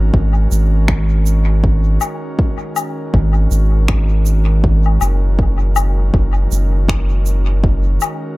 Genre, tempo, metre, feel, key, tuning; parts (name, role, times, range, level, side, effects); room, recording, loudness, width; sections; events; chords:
ambient dub; 80 BPM; 4/4; swing 56% on 16ths; A4 = 442 Hz
airy breathy pad; sustained chords; 0.0-8.4 s; D#3 to A#4; -26 LUFS; right 1 dB; chorus
warm sub bass; bass; 0.0-8.0 s; F#1 to G#1; -13 LUFS; equal
electronic kick drum; drums; 0.1-7.8 s; -16 LUFS; equal; overdrive
shaker, finger snaps and woodblock; drums; 0.5-8.2 s; -23 LUFS; left 5 dB; dub echo
studio reverb; echo-heavy mix; -13 LUFS; side -20 dB against mid
0.0-8.4 A section
0.0 F#